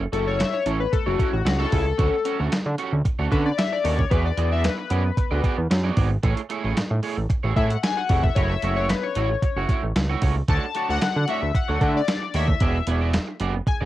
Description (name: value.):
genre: early-eighties boogie funk.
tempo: 113 BPM.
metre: 4/4.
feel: straight.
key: F# minor.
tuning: A4 = 440 Hz.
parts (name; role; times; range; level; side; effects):
electric guitar at the edge of break-up; riff; 0.0-13.9 s; A3 to E5; -29 LUFS; right 7 dB; analog chorus, cassette tape.
fat analog bass; bass; 0.0-13.9 s; E1 to D3; -23 LUFS; right 1 dB; none.
chorused polysynth; accompaniment; 0.1-13.8 s; F#4 to A5; -26 LUFS; left 7 dB; cassette tape.
crisp 8-bit digital drum machine; drums; 0.1-13.8 s; handclaps, hi-hat, kick drum, snare drum; -24 LUFS; right 1 dB; cassette tape.
room: light reverb.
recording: home recording on cassette.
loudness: -20 LUFS.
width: side -14 dB against mid.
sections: 0.0-13.9 A section.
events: analog polysynth solo 0.0-13.9.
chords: 0.0 F#m7; 2.0 Dmaj7; 4.1 E9; 6.2 Amaj7; 8.4 F#m7; 10.5 Dmaj7; 12.6 E9.